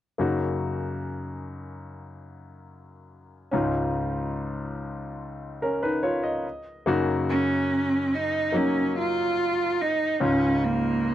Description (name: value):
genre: pop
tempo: 72 BPM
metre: 4/4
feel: straight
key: F# major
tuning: A4 = 440 Hz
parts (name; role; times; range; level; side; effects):
- clear concert grand piano; accompaniment; 0.2-11.1 s; C#2 to D#5; -27 LUFS; left 2 dB; none
- clear cello; melody; 7.3-11.1 s; A#3 to E#4; -23 LUFS; right 2 dB; slapback echo
room: light reverb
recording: dry, close 1970s-style studio recording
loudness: -23 LUFS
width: side -12 dB against mid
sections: 0.2-6.9 A section; 6.9-11.1 B section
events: none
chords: 0.2 F#6; 3.5 C#add9; 6.4 N.C.; 6.9 F#6; 10.2 C#add9